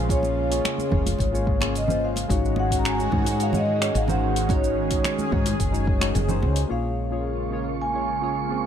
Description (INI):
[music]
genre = sunset chillout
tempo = 109 BPM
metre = 4/4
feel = straight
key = Bb minor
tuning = A4 = 440 Hz
[part]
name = soft electric-piano-like synth keys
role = accompaniment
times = 0.0-8.7 s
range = Ab3 to Db5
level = -29 LUFS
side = moving between left 9 dB and right 7 dB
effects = chorus, auto-pan, ping-pong delay
[part]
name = lush unison pad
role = sustained chords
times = 0.0-8.7 s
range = Db3 to Ab4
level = -29 LUFS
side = equal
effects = chorus, phaser
[part]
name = woody fretless electric bass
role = bass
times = 0.0-8.7 s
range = F1 to Ab2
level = -26 LUFS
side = equal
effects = lush chorus
[part]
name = vibraphone with medium mallets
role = melody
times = 0.1-8.7 s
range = Db5 to Bb5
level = -29 LUFS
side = equal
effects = digital delay
[part]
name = deep house drum kit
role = drums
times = 0.1-6.7 s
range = finger snaps, hi-hat, shaker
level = -30 LUFS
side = equal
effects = overdrive
[part]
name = electronic kick drum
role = drums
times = 0.1-6.0 s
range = none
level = -26 LUFS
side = equal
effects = overdrive
[part]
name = congas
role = percussion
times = 0.2-6.5 s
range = none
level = -31 LUFS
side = right 4 dB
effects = none
[part]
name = wind-like tuned noise texture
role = texture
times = 7.4-8.7 s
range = Db6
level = -35 LUFS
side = right 10 dB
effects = built-in reverb
[sound]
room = light reverb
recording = none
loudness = -21 LUFS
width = side -9 dB against mid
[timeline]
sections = 0.0-6.7 A section; 6.7-8.7 B section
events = none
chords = 0.0 Bbm7; 2.3 Ab7sus4; 6.7 Bbm7